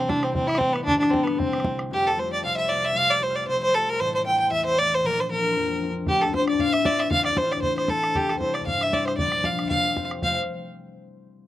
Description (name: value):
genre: celtic folk, Celtic reel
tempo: 231 BPM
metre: 4/4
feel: swing 55% on 8ths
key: F major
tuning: A4 = 437 Hz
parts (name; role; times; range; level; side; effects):
- warm fiddle; melody; 0.0-10.4 s; B3 to G5; -22 LUFS; equal; none
- concert harp; accompaniment; 0.0-10.4 s; D1 to C5; -28 LUFS; left 4 dB; none
- bodhran; percussion; 0.1-1.8, 6.1-10.4 s; none; -31 LUFS; right 1 dB; none
room: little or no reverb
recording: recorded outdoors, with no room sound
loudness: -21 LUFS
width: side -14 dB against mid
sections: 0.0-1.9 A section; 1.9-10.2 B section; 10.2-11.3 C section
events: none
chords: 0.3 Amadd9; 0.9 Gadd9; 1.4 C; 1.9 Fadd9; 4.0 Am; 5.0 Bb; 6.1 Dm7; 8.1 C; 9.2 Bb; 9.7 Fsus2; 10.2 F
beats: 0.09 0.35 0.61 | 0.87 1.13 1.39 1.65 | 1.91 2.17 2.43 2.69 | 2.95 3.21 3.47 3.73 | 3.99 4.25 4.51 4.77 | 5.03 5.29 5.55 5.81 | 6.07 6.33 6.59 6.85 | 7.11 7.37 7.63 7.89 | 8.15 8.40 8.66 8.92 | 9.18 9.44 9.70 9.96 | 10.22